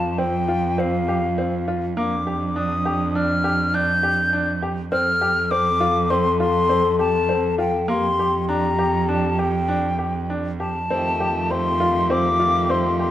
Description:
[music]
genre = contemporary instrumental, chamber music in an uneven meter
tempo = 101 BPM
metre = 5/4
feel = straight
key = F mixolydian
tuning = A4 = 440 Hz
[part]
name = mellow silver concert flute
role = melody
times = 0.0-13.1 s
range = F5 to G6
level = -22 LUFS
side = left 1 dB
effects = none
[part]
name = dark French horn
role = second line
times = 0.0-13.1 s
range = D4 to A4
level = -25 LUFS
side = left 5 dB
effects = none
[part]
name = clear baby grand piano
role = arpeggios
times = 0.0-13.1 s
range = Bb3 to G4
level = -26 LUFS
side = left 1 dB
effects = none
[part]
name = rich cello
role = bass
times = 0.0-13.1 s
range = F2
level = -25 LUFS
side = right 3 dB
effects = none
[part]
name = pedal harmonium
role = sustained chords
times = 10.9-13.1 s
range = Eb3 to G4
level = -29 LUFS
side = left 1 dB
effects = none
[sound]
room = light reverb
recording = close, detailed microphones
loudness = -18 LUFS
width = side -12 dB against mid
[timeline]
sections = 0.0-13.1 A section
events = none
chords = 0.0 Fsus2; 2.0 Ebmaj7/F; 4.9 F; 7.9 F69; 10.9 F9

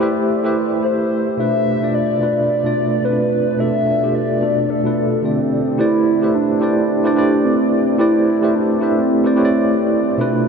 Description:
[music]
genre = amapiano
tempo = 109 BPM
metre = 4/4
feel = swing 58% on 16ths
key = unclear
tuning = A4 = 441 Hz
[part]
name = tine electric piano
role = accompaniment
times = 0.0-10.5 s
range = B2 to E5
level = -16 LUFS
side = equal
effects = medium tremolo
[part]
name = hollow clarinet-like synth lead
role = melody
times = 0.8-9.9 s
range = C4 to E5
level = -19 LUFS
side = right 1 dB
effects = chorus, phaser, tape echo
[sound]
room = wet huge ambient reverb, RT60 7.7 s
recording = dreamy mix soaked in reverb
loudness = -14 LUFS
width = side -6 dB against mid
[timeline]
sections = 0.0-5.8 A section; 5.8-10.5 B section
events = drop 5.8-10.5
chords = 0.0 Am11; 1.4 Bm7b5; 5.8 Am11

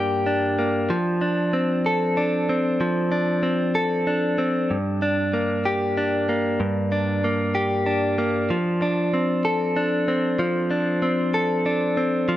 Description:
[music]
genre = pop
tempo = 63 BPM (dotted quarters)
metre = 6/8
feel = straight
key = unclear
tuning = A4 = 440 Hz
[part]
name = direct-recorded clean electric guitar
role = solo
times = 0.0-12.4 s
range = G2 to A4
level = -20 LUFS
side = equal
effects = none
[sound]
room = light reverb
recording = none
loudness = -20 LUFS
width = side -13 dB against mid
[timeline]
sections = 0.0-12.3 A section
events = none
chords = 0.0 Gm; 0.9 Dm7/F; 4.7 Gm; 8.5 Dm7/F

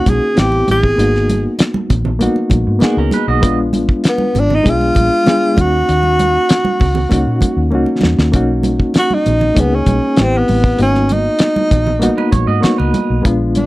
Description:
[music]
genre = lush 1970s-style soul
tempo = 98 BPM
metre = 4/4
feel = straight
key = G# minor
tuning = A4 = 435 Hz
[part]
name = breathy tenor saxophone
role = melody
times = 0.0-13.7 s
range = B3 to G#4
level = -15 LUFS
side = equal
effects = none
[part]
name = reed electric piano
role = accompaniment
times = 0.0-13.7 s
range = G#3 to G#4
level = -17 LUFS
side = left 1 dB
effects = medium tremolo
[part]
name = vintage muted fingered electric bass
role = bass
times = 0.1-13.7 s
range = G#1 to A#2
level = -17 LUFS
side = equal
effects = none
[part]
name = cloth-damped thuddy drum kit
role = drums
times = 0.1-13.7 s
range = hi-hat, kick drum, snare drum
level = -14 LUFS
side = equal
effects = none
[part]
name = congas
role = percussion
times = 0.1-13.7 s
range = none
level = -22 LUFS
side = right 3 dB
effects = none
[part]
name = clean electric guitar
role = riff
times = 2.8-3.6, 12.2-13.2 s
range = A#3 to D#5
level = -20 LUFS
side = right 7 dB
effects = none
[sound]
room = small room ambience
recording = dry, close 1970s-style studio recording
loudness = -11 LUFS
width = side -18 dB against mid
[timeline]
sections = 0.0-8.3 A section; 8.3-13.7 A section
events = drum fill 7.7-8.3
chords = 0.4 Am9; 1.0 G#m9; 3.4 A#7b9; 5.6 D#m7; 8.3 Bmaj7; 10.2 Am9; 10.8 G#m9

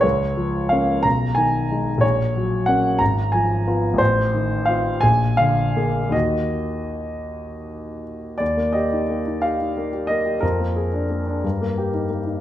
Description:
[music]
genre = classical, romantic character piece for solo piano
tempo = 52-62 BPM (dotted quarters)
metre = 6/8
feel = rubato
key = Eb minor, Eb major from 8.4 s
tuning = A4 = 439 Hz
[part]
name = warm grand piano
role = solo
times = 0.0-12.4 s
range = Ab1 to Bb5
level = -18 LUFS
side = equal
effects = none
[sound]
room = moderate recital hall reverb, RT60 1.4 s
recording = none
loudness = -18 LUFS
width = side -12 dB against mid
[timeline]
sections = 0.0-8.4 A section; 8.4-12.4 B section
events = none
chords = 0.0 Bbm/Db; 1.0 Abm/Cb; 2.0 Gb/Bb; 3.0 Fdim/Ab; 4.0 F7/A; 5.0 Bb7; 6.1 Ebm; 8.4 Eb; 10.4 Bb7/F; 11.4 Eb/G

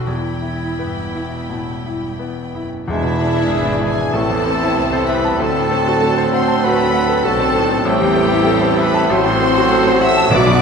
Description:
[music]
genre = classical, romantic movement for piano and orchestra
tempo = 82-101 BPM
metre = 4/4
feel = rubato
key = E minor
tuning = A4 = 440 Hz
[part]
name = bright grand piano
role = melody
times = 0.0-10.6 s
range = A1 to A5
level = -19 LUFS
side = left 2 dB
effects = none
[part]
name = rich studio violin section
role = melody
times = 0.0-10.6 s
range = E5 to E6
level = -25 LUFS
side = left 1 dB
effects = none
[part]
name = rich studio violin section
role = second line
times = 0.0-10.6 s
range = B3 to G5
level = -24 LUFS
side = left 2 dB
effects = none
[part]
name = warm clarinet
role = second line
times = 0.0-10.6 s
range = B3 to E4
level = -28 LUFS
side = left 1 dB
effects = none
[part]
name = warm studio viola section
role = accompaniment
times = 0.0-10.6 s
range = E3 to E4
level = -26 LUFS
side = right 3 dB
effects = none
[part]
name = rich studio double bass section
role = bass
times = 0.0-10.6 s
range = E1 to D2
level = -29 LUFS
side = right 4 dB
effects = none
[part]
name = warm studio cello section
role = bass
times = 0.0-10.6 s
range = E2 to D3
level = -29 LUFS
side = right 4 dB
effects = none
[part]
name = mellow large flute ensemble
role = second line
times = 2.9-10.6 s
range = E4 to E5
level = -24 LUFS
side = right 1 dB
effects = none
[part]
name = warm oboe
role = second line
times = 2.9-10.6 s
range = G#4 to B4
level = -26 LUFS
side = left 1 dB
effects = none
[part]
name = dark bassoon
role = accompaniment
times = 2.9-10.6 s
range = E3 to F#3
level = -26 LUFS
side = right 4 dB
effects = none
[part]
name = bright trombone section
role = sustained chords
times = 2.9-10.5 s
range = A2 to A3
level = -28 LUFS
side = right 4 dB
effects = none
[part]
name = dark French horn section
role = sustained chords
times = 2.9-10.5 s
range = B3 to F#4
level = -26 LUFS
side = left 1 dB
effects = none
[part]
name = clear trumpet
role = stabs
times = 2.9-10.6 s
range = E4 to E5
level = -23 LUFS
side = right 3 dB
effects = none
[part]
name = warm tuba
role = bass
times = 2.9-10.6 s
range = E1 to D2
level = -26 LUFS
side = right 4 dB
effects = none
[part]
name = timpani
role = percussion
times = 2.9-3.8, 10.3-10.6 s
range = E2 to B2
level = -23 LUFS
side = left 2 dB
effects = none
[sound]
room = wet scoring stage reverb, RT60 1.4 s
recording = none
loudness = -14 LUFS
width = side -6 dB against mid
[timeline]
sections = 0.0-2.9 A section; 2.9-10.6 B section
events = none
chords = 0.1 Em; 2.9 E7; 4.2 Am; 5.4 D7; 7.9 Am7; 9.1 F#dim/A

